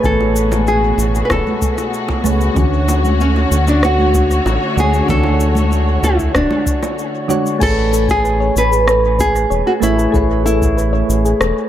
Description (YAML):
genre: sunset chillout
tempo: 95 BPM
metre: 4/4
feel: straight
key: A major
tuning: A4 = 441 Hz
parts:
  - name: nylon-string guitar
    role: melody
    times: 0.0-11.4 s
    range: C#4 to B4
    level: -18 LUFS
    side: equal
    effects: dub echo
  - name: soft electric-piano-like synth keys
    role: accompaniment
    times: 0.0-11.7 s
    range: D3 to G#5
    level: -20 LUFS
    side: right 1 dB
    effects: chorus, auto-pan, dub echo
  - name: rich studio string section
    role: sustained chords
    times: 0.0-7.6 s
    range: B2 to C#5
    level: -22 LUFS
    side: left 2 dB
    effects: none
  - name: round analog bass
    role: bass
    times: 0.0-11.5 s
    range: D1 to D2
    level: -16 LUFS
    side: equal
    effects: none
  - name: deep house drum kit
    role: drums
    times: 0.0-11.5 s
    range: crash cymbal, rim click, shaker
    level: -24 LUFS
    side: left 1 dB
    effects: dub echo
  - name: electronic kick drum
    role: drums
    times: 0.0-10.7 s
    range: none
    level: -20 LUFS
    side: equal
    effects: none
  - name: congas and bongos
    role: percussion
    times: 0.0-7.4 s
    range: none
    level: -24 LUFS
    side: right 2 dB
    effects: none
  - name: soft round pluck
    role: arpeggios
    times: 7.6-11.5 s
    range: G#4 to C#5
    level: -22 LUFS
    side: left 4 dB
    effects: chorus, dub echo
room: moderate spring reverb, RT60 2.6 s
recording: echo-heavy mix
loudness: -12 LUFS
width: side -11 dB against mid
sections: 0.0-7.6 A section; 7.6-11.7 B section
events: filter sweep on synth keys 0.0-7.6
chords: 0.0 Amaj9; 2.6 Dmaj7; 7.6 Amaj9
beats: | 0.04 0.67 1.30 1.93 | 2.56 3.19 3.83 4.46 | 5.09 5.72 6.35 6.98 | 7.61 8.25 8.88 9.51 | 10.14 10.77 11.40